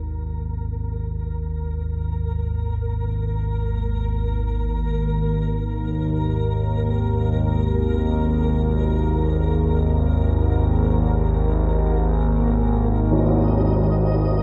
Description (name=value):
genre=dark ambient drone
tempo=free time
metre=none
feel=none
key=unclear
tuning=A4 = 441 Hz
part: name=analog drone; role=drone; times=0.0-14.4 s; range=G#1 to D#2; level=-22 LUFS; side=equal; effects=subtle chorus
part: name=flickering grainy texture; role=texture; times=0.0-14.4 s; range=A#4 to D#5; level=-35 LUFS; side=equal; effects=built-in reverb
part: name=deep dark ambient pad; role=sustained chords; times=13.7-14.4 s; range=G#3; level=-35 LUFS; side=equal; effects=none
part: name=tam-tam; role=percussion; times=13.1-13.3 s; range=none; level=-25 LUFS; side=equal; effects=low-pass filter on cymbals
room=moderate huge ambient reverb, RT60 7.7 s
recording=none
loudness=-22 LUFS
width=mono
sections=0.0-14.4 A section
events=fade-in on synth texture 0.0-14.4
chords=0.0 G#sus2